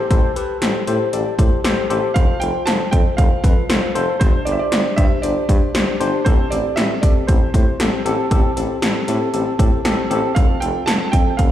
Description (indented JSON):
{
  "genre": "synth-pop",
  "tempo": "117 BPM",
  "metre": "4/4",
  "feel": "straight",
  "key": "A minor",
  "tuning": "A4 = 442 Hz",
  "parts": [
    { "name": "tine electric piano", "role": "accompaniment", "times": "0.0-11.5 s", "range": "C4 to D5", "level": "-21 LUFS", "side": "left 4 dB", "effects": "analog chorus" },
    { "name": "clear tuba", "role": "bass", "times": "0.1-11.5 s", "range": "F1 to A2", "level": "-24 LUFS", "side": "right 1 dB", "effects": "none" },
    { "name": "80s electronic pad drums", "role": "drums", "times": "0.1-11.5 s", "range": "hi-hat, kick drum, snare drum", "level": "-17 LUFS", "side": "equal", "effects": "none" },
    { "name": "warm baby grand piano", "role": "melody", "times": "2.1-11.5 s", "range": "C5 to A5", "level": "-24 LUFS", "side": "right 5 dB", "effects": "digital delay" }
  ],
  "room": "moderate plate reverb, RT60 2.4 s",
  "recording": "played on a big sound system in a bare room, large studio reverb",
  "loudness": "-15 LUFS",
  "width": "side -12 dB against mid",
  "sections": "0.0-11.5 A section",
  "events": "none",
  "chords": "0.0 Am7; 2.2 F; 4.2 Csus2/G; 6.3 Am7; 10.4 F",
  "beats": "| 0.11 0.62 1.13 1.65 | 2.16 2.67 3.18 3.70 | 4.21 4.72 5.24 5.75 | 6.26 6.77 7.29 7.80 | 8.31 8.82 9.34 9.85 | 10.36 10.88 11.39"
}